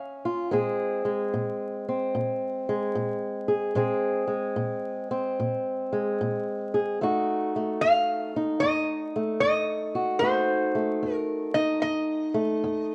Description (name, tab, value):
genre	acoustic country blues, solo or duo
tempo	74 BPM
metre	4/4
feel	swing 66% on 8ths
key	unclear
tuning	A4 = 439 Hz
part	metal-body resonator slide guitar	melody	0.0-2.7, 7.8-12.9 s	C5 to F5	-28 LUFS	equal	plate reverb
part	fingerpicked old ladder-braced acoustic guitar	accompaniment	0.0-12.9 s	F2 to Ab4	-28 LUFS	equal	none
room	moderate small room ambience, RT60 0.5 s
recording	worn, warbling old tape, cassette tape, vinyl crackle, warbly pitch drift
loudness	-27 LUFS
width	mono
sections	0.0-12.9 A section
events	none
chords	0.0 Eb7sus2; 0.5 Bbsus2; 7.0 F7b9